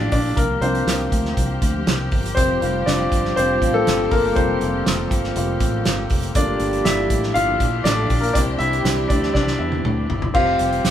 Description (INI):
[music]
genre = piano-driven pop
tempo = 120 BPM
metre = 4/4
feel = straight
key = F major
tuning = A4 = 439 Hz
[part]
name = warm concert grand piano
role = accompaniment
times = 0.0-10.9 s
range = G3 to F5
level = -20 LUFS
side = left 2 dB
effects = none
[part]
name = warm studio string section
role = sustained chords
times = 0.0-10.9 s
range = Bb2 to G4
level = -29 LUFS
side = equal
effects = none
[part]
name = fingered electric bass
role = bass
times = 0.0-10.9 s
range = F1 to E2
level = -25 LUFS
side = equal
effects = none
[part]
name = loose indie drum kit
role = drums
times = 0.1-10.9 s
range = crash cymbal, hi-hat, kick drum, snare drum, toms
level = -22 LUFS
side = right 1 dB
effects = none
[part]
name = mellow French horn section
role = second line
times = 2.4-10.1 s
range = F3 to A4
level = -27 LUFS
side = right 2 dB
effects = none
[sound]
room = moderate studio reverb, RT60 0.7 s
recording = band playing live in one room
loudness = -17 LUFS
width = side -10 dB against mid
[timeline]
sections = 0.0-10.3 A section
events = grand piano solo 0.0-10.3; drum fill 9.4-10.3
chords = 0.4 C7sus4; 2.4 Fsus2; 6.4 Gm7; 8.4 Cadd9; 10.3 Fsus2